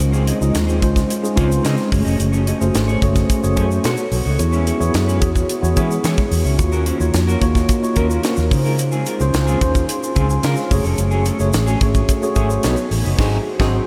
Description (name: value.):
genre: polished 1980s jazz-funk pop.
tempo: 109 BPM.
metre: 4/4.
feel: straight.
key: Db major.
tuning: A4 = 440 Hz.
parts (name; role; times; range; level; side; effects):
mellow tine electric piano; accompaniment; 0.0-13.9 s; Ab3 to C6; -22 LUFS; equal; lush chorus.
mellow electric guitar; riff; 0.0-13.8 s; Gb3 to Eb5; -29 LUFS; equal; lush chorus.
vintage muted fingered electric bass; bass; 0.0-13.8 s; F1 to E3; -21 LUFS; equal; none.
crisp fusion drum kit; drums; 0.0-13.8 s; crash cymbal, hi-hat, kick drum, snare drum; -23 LUFS; equal; none.
tube shaker; percussion; 0.0-13.2 s; none; -36 LUFS; equal; none.
room: moderate huge ambient reverb, RT60 8.0 s.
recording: dreamy mix soaked in reverb.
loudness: -17 LUFS.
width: mono.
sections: 0.0-13.9 A section.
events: band accent 13.2-13.9.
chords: 0.0 Dbmaj7; 1.9 Gbmadd9; 3.8 Cb7; 4.4 E6; 6.6 Ebm7; 8.5 Dbmaj7; 10.7 Gbmadd9; 12.6 Cb7; 13.2 Ab7.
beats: | 0.00 0.55 1.10 1.65 | 2.20 2.75 3.30 3.85 | 4.39 4.94 5.49 6.04 | 6.59 7.14 7.69 8.24 | 8.79 9.34 9.89 10.44 | 10.98 11.54 12.09 12.63 | 13.19 13.73.